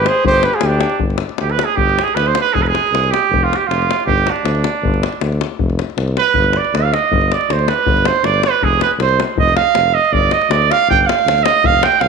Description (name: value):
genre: balkan folk, Balkan brass band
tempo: 158 BPM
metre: 2/4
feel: straight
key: G phrygian dominant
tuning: A4 = 440 Hz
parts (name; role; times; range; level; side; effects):
- mellow cornet; melody; 0.0-1.0 s; G4 to C5; -16 LUFS; equal; none
- clear trumpet; second line; 0.0-12.1 s; D4 to G5; -14 LUFS; right 8 dB; none
- mellow tuba; bass; 0.0-12.1 s; F1 to D2; -20 LUFS; left 1 dB; none
- davul; percussion; 0.1-12.1 s; none; -20 LUFS; left 6 dB; none
room: moderate echo chamber reverb, RT60 1.7 s, studio reverb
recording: 1960s-style stereo with parts hard left and right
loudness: -13 LUFS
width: side -5 dB against mid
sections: 0.0-1.0 A section; 1.0-12.1 B section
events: trumpet solo 1.0-12.1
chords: 0.2 G5; 2.5 Fm; 4.1 G5; 5.6 F5; 6.4 G5; 8.6 F5; 10.1 G5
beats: | 0.25 0.63 | 1.01 1.40 | 1.78 2.16 | 2.54 2.92 | 3.31 3.69 | 4.07 4.45 | 4.83 5.22 | 5.60 5.98 | 6.36 6.74 | 7.12 7.50 | 7.87 8.25 | 8.63 9.01 | 9.38 9.76 | 10.14 10.51 | 10.89 11.27 | 11.64 12.02